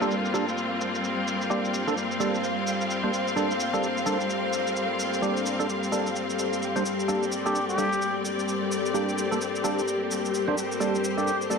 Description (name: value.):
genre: bass house.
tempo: 129 BPM.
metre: 4/4.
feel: swing 60% on 16ths.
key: G minor.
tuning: A4 = 440 Hz.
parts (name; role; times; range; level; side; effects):
deep dark ambient pad; sustained chords; 0.0-11.6 s; G3 to C5; -30 LUFS; left 2 dB; chorus, built-in reverb.
percussive organ stab; stabs; 0.0-11.6 s; G3 to C5; -30 LUFS; right 2 dB; analog chorus, dub echo.
shaker; drums; 0.0-11.6 s; none; -37 LUFS; right 1 dB; low-pass filter on cymbals, low-pass filter on perc.
clear studio string section; texture; 0.0-11.6 s; G3 to A5; -28 LUFS; left 1 dB; none.
trumpet with plunger mute; melody; 7.5-8.2, 11.2-11.4 s; G4; -31 LUFS; equal; dub echo.
room: moderate digital room reverb, RT60 0.9 s, digital ambience.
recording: none.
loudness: -24 LUFS.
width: side -5 dB against mid.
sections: 0.0-11.6 A section.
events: none.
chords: 0.0 Gmadd9.